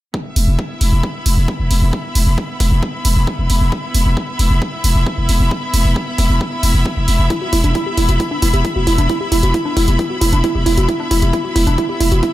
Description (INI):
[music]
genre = driving peak-time techno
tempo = 134 BPM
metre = 4/4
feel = straight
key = unclear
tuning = A4 = 445 Hz
[part]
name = electronic kick drum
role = drums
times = 0.1-12.3 s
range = none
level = -25 LUFS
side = equal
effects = high-pass filter on kick, high-pass filter on room
[part]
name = rich studio string section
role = texture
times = 0.1-12.3 s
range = B3 to B5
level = -22 LUFS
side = equal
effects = sidechain pumping
[part]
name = growling 808-style bass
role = bass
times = 0.4-12.2 s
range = E1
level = -14 LUFS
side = equal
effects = tube saturation, sidechain pumping, low-pass filter
[part]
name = electronic hi-hat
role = drums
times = 0.4-12.3 s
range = none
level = -23 LUFS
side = right 3 dB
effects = sidechain pumping on hats
[part]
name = woody wave-folded pluck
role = riff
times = 7.3-12.3 s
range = D4 to G4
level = -18 LUFS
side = right 1 dB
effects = chorus, sidechain pumping, digital delay
[sound]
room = little or no reverb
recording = none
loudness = -13 LUFS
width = side -15 dB against mid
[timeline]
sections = 0.1-12.3 A section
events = none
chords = 0.1 E5